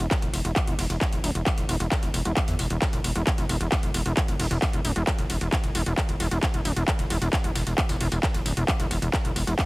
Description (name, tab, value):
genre	driving peak-time techno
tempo	133 BPM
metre	4/4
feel	straight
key	unclear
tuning	A4 = 441 Hz
part	gritty driven synth bass	bass	0.0-9.5 s	D1 to E2	-26 LUFS	equal	sidechain pumping
part	techno drum kit	drums	0.0-9.7 s	handclaps, hi-hat, ride cymbal	-29 LUFS	equal	none
part	dusty soul sampler-style drum kit	drums	0.1-9.7 s	hi-hat, snare drum, tambourine	-40 LUFS	left 1 dB	none
part	electronic kick drum	drums	0.1-9.7 s	none	-26 LUFS	equal	distortion
room	digital ambience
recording	heavily compressed radio sound, multiband compression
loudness	-23 LUFS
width	side -22 dB against mid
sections	0.0-9.7 A section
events	none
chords	none